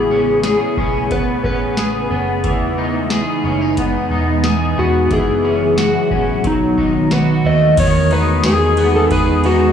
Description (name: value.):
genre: dream pop.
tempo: 90 BPM.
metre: 4/4.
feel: straight.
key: E major.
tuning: A4 = 440 Hz.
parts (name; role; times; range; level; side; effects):
electric slide guitar; melody; 0.0-9.7 s; D#4 to D#5; -17 LUFS; left 1 dB; digital delay.
ethereal airy pad; sustained chords; 0.0-9.7 s; C#3 to G#4; -19 LUFS; right 2 dB; ensemble chorus, built-in reverb.
electric guitar at the edge of break-up; arpeggios; 0.0-9.7 s; D#3 to G#4; -20 LUFS; left 2 dB; ensemble chorus, digital delay.
vintage muted fingered electric bass; bass; 0.0-9.7 s; E1 to E2; -20 LUFS; equal; none.
booming analog drum machine; drums; 0.4-9.6 s; crash cymbal, hi-hat, kick drum, ride cymbal, snare drum, tambourine; -22 LUFS; equal; none.
room: moderate plate reverb, RT60 1.5 s, digital ambience.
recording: studio reverb.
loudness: -13 LUFS.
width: side -8 dB against mid.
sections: 0.0-7.8 A section; 7.8-9.7 B section.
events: none.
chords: 0.0 Amaj9; 2.4 Emaj7; 5.1 F#7sus4; 6.4 B7; 7.8 Emaj7.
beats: 0.44 1.11 1.77 | 2.44 3.11 3.77 4.44 | 5.11 5.77 6.44 7.11 | 7.77 8.44 9.11.